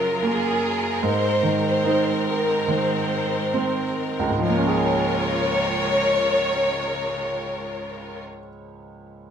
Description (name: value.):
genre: pop ballad.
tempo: 66-76 BPM.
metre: 4/4.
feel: straight.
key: Db major.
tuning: A4 = 440 Hz.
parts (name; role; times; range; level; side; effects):
warm symphonic violin section; melody; 0.0-8.2 s; Ab4 to Db5; -24 LUFS; left 1 dB; none.
clear baby grand piano; accompaniment; 0.0-9.3 s; Db2 to Ab4; -25 LUFS; right 2 dB; none.
bright studio string section; sustained chords; 0.0-8.2 s; Gb2 to Bb4; -28 LUFS; left 3 dB; none.
room: wet studio reverb, RT60 0.6 s.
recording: rough home demo mix.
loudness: -20 LUFS.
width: side -8 dB against mid.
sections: 0.0-4.4 A section; 4.4-8.0 B section.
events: slowing down 0.0-4.4.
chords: 0.0 Gbmaj7; 1.0 Abadd9; 4.4 Db6.